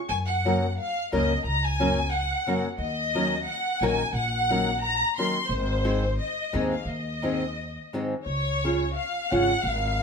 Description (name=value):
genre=mexican folk, mariachi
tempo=88 BPM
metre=4/4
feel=swing 53% on 8ths, rubato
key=Db major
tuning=A4 = 440 Hz
part: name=rich studio violin section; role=melody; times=0.1-10.0 s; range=C5 to C6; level=-27 LUFS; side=left 1 dB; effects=none
part: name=upright bass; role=bass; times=0.1-10.0 s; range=Ab1 to Gb2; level=-29 LUFS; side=equal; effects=none
part: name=nylon-string guitar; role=accompaniment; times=0.4-10.0 s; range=Gb2 to Bb4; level=-27 LUFS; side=equal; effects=none
room=wet stone room reverb, RT60 1.0 s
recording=band playing live in one room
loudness=-23 LUFS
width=side -6 dB against mid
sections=0.0-10.0 A section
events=none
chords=0.1 Gb; 2.8 Ebm7; 5.5 Ab; 8.3 Db